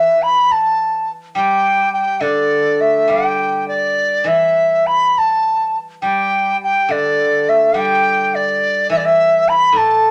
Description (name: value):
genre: chinese traditional, Chinese chamber ensemble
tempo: 105 BPM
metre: 4/4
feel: rubato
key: G gong mode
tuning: A4 = 440 Hz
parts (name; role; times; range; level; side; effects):
- bright reedy large dizi; melody; 0.0-10.1 s; D5 to B5; -16 LUFS; equal; none
- steel-string zither; accompaniment; 0.0-10.1 s; A2 to G3; -24 LUFS; equal; none
room: moderate studio reverb, RT60 0.6 s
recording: none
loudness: -15 LUFS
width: mono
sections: 0.0-10.1 A section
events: none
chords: none